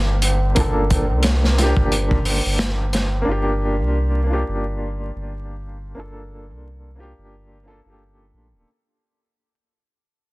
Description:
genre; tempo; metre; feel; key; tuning
trip hop; 89 BPM; 4/4; swing 57% on 16ths; G minor; A4 = 440 Hz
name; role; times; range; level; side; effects
warm upright piano; accompaniment; 0.0-8.7 s; Bb3 to A4; -24 LUFS; equal; tremolo, tape echo
warm sub bass; bass; 0.0-8.6 s; D1 to C2; -21 LUFS; equal; tube saturation
tabla; percussion; 0.1-3.2 s; none; -31 LUFS; right 2 dB; none
crunchy breakbeat drum kit; drums; 0.2-3.1 s; hi-hat, kick drum, snare drum; -21 LUFS; equal; none
room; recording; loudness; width
small room ambience; dense, heavily limited modern master, vinyl crackle; -17 LUFS; side -22 dB against mid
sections
0.0-8.7 A section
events
fade-out 0.0-8.7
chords
0.0 Gm7

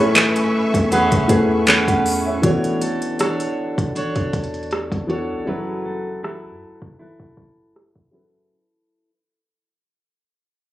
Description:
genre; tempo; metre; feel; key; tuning
contemporary R&B; 79 BPM; 4/4; swing 54% on 16ths; unclear; A4 = 443 Hz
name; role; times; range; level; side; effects
felt-muted upright piano; accompaniment; 0.0-8.5 s; A2 to F#5; -22 LUFS; left 1 dB; none
warm studio string section; sustained chords; 0.0-2.4 s; B4 to C#6; -26 LUFS; equal; sidechain pumping
fingerpicked steel-string acoustic guitar; arpeggios; 0.0-9.1 s; E3 to C#5; -22 LUFS; right 1 dB; tape echo
clean 808-style bass; bass; 0.0-8.5 s; D1 to F#2; -30 LUFS; equal; none
smooth R&B drum kit; drums; 0.2-8.1 s; handclaps, hi-hat, kick drum, rim click; -19 LUFS; equal; overdrive
synth chime; texture; 0.9-1.9 s; F#5; -24 LUFS; right 2 dB; ensemble chorus, tape echo
room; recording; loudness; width
light reverb; recorded on a phone in the room, studio ambience, low-pass filter; -17 LUFS; side -14 dB against mid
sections
0.0-2.4 A section; 2.4-8.5 B section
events
fade-out 2.4-8.5; filter sweep 2.4-8.5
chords
0.0 Amaj9; 2.4 E13sus4; 5.5 F#m11

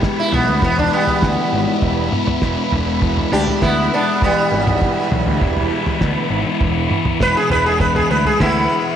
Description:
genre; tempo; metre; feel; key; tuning
psychedelic rock; 100 BPM; 4/4; straight; E major; A4 = 440 Hz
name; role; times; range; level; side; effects
sitar; melody; 0.0-9.0 s; G3 to B4; -18 LUFS; right 1 dB; slapback echo
dark symphonic string section; sustained chords; 0.0-9.0 s; E4 to B5; -24 LUFS; right 12 dB; none
thick fuzz guitar; riff; 0.0-9.0 s; E3 to B3; -21 LUFS; left 9 dB; distortion, phaser
cloth-damped thuddy drum kit; drums; 0.0-8.5 s; kick drum, snare drum, toms; -21 LUFS; right 1 dB; none
fuzz picked electric bass; bass; 0.3-8.7 s; E1 to D2; -22 LUFS; right 1 dB; overdrive
room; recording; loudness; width
light reverb, small room ambience; 1960s-style stereo with parts hard left and right; -14 LUFS; side -9 dB against mid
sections
0.0-9.0 A section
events
sitar solo 0.0-9.0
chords
0.0 E

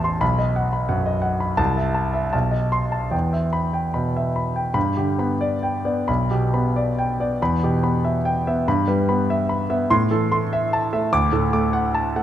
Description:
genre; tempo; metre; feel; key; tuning
classical, romantic character piece for solo piano; 71-100 BPM; 2/4; rubato; E minor, G major from 4.8 s; A4 = 439 Hz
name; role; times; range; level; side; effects
clear grand piano; solo; 0.0-12.2 s; A1 to D6; -19 LUFS; equal; none
room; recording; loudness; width
moderate concert hall reverb, RT60 2.1 s; minimal, uncompressed stereo recording; -19 LUFS; side -11 dB against mid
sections
0.0-4.8 A section; 4.8-12.2 B section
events
none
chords
0.2 B; 1.6 Am/C; 2.3 B7b9; 3.1 Em; 4.8 G; 6.1 G/B; 7.4 Em; 8.7 Em/G; 9.9 Am; 11.1 D

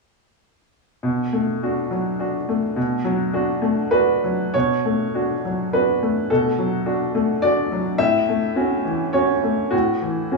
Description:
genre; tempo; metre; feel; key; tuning
neoclassical minimalist piano; 104 BPM; 3/4; uneven beats, rubato; B minor; A4 = 441 Hz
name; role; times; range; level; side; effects
clear upright piano; solo; 1.0-10.4 s; A2 to E5; -18 LUFS; equal; none
room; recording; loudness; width
moderate large studio reverb, RT60 0.9 s; band playing live in one room, studio ambience; -18 LUFS; side -2 dB against mid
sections
1.0-4.5 A section; 4.5-10.4 B section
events
none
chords
1.0 Bm7; 8.0 F#m7/A

